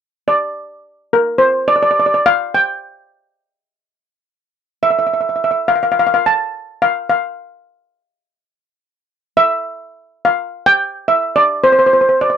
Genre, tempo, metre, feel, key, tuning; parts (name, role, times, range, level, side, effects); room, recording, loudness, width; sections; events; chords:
calypso; 105 BPM; 4/4; straight; F major; A4 = 441 Hz
steel pan; solo; 0.3-12.4 s; Bb4 to A5; -12 LUFS; equal
light reverb; dry, close 1970s-style studio recording; -13 LUFS; side -8 dB against mid
0.0-12.4 A section